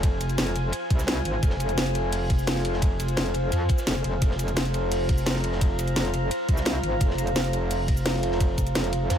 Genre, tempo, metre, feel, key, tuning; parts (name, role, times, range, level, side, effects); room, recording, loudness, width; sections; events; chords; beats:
dark technical drum and bass; 172 BPM; 4/4; straight; F minor; A4 = 440 Hz
deep dark ambient pad; sustained chords; 0.0-9.2 s; F4 to Bb5; -29 LUFS; equal; chorus, built-in reverb, sidechain pumping
metallic wobble bass; bass; 0.0-9.2 s; F1 to F2; -27 LUFS; equal; chorus, overdrive
crunchy breakbeat drum kit; drums; 0.0-9.2 s; hi-hat, ride cymbal, snare drum; -38 LUFS; equal; high-pass filter on cymbals, high-pass filter on hats, high-pass filter on snare, high-pass filter on room
drum and bass drum kit; drums; 0.0-9.2 s; hi-hat, shaker, snare drum; -28 LUFS; equal
electronic kick drum; drums; 0.0-8.6 s; -23 LUFS; equal
studio ambience; -22 LUFS; side -9 dB against mid
0.0-9.2 A section
0.0 Fm
| 0.03 0.38 0.73 1.08 | 1.43 1.78 2.12 2.47 | 2.82 3.17 3.52 3.87 | 4.22 4.57 4.92 5.26 | 5.61 5.96 6.31 6.66 | 7.01 7.36 7.71 8.06 | 8.40 8.75 9.10